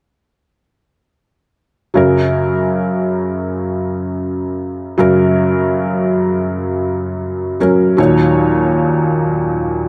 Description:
pop; 80 BPM; 4/4; straight; F# major; A4 = 439 Hz
felt-muted upright piano; solo; 1.9-9.9 s; D#2 to C#5; -16 LUFS; equal
moderate plate reverb, RT60 2.9 s; -16 LUFS; mono
2.0-9.9 A section
2.0 F#; 8.0 D#m7
| 1.96 2.72 3.48 4.24 | 4.99 5.74 6.49 7.24 | 7.99 8.74 9.48

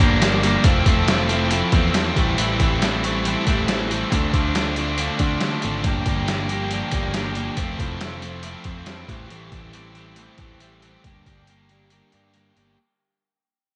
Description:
indie rock; 138 BPM; 4/4; straight; G dorian; A4 = 440 Hz
biting overdriven guitar; riff; 0.0-12.8 s; E3 to G4; -27 LUFS; equal; spring reverb
twelve-string electric guitar; riff; 0.0-12.8 s; G2 to G4; -29 LUFS; equal; subtle chorus
picked electric bass; bass; 0.0-12.8 s; F1 to D3; -29 LUFS; equal
trip hop sampler-style drum kit; drums; 0.0-12.7 s; hi-hat, kick drum, snare drum; -25 LUFS; equal
light reverb; nothing above 11.0 kHz; -21 LUFS; mono
0.0-12.8 A section
fade-out 0.0-12.8; break 11.9-12.8
0.0 Gm7; 0.6 Fmaj7; 2.2 Am7; 4.1 Dm7; 5.8 Gm7; 7.6 Fmaj7; 9.1 Am7; 11.0 Gm
0.22 | 0.65 1.08 1.51 1.95 | 2.38 2.81 3.24 3.67 | 4.11 4.54 4.97 5.41 | 5.84 6.27 6.71 7.14 | 7.57 8.01 8.44 8.87 | 9.31 9.74 10.17 10.61 | 11.04 11.47 11.91 12.34

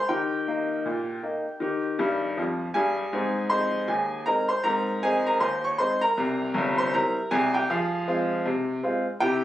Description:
ragtime piano; 79 BPM; 2/4; swing 59% on 16ths; Ab major; A4 = 435 Hz
bright upright piano; solo; 0.0-9.4 s; G1 to Db6; -23 LUFS; equal
moderate studio reverb, RT60 0.6 s; recorded on a phone in the room, club reverb, nothing above 10.3 kHz; -23 LUFS; side -13 dB against mid
0.0-9.4 A section
upright piano fill 2.0-3.1
0.1 Eb; 3.1 Ab; 6.2 C7; 7.7 Fm
| 0.08 0.84 | 1.61 2.37 | 3.13 3.89 | 4.65 5.41 | 6.17 6.93 | 7.69 8.45 | 9.20

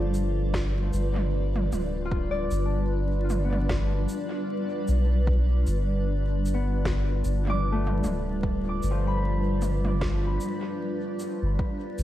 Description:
ambient dub; 76 BPM; 4/4; swing 57% on 16ths; G mixolydian; A4 = 438 Hz
granular cloud pad; sustained chords; 0.0-12.0 s; G3 to D5; -30 LUFS; right 1 dB; built-in reverb
Celtic harp; arpeggios; 0.0-12.0 s; F3 to D6; -35 LUFS; left 4 dB; dub echo
soft dub sub bass; bass; 0.0-12.0 s; D1 to B1; -25 LUFS; equal; tube saturation
organic electronic drum kit; drums; 0.1-12.0 s; shaker, snare drum, toms; -36 LUFS; right 1 dB; overdrive, dub echo
electronic kick drum; drums; 0.5-11.8 s; -31 LUFS; equal; overdrive
light reverb; vinyl crackle; -24 LUFS; side -13 dB against mid
0.0-12.0 A section
0.0 G7
0.54 1.33 | 2.12 2.91 3.70 4.49 | 5.28 6.07 6.86 7.64 | 8.43 9.22 10.01 10.80 | 11.59

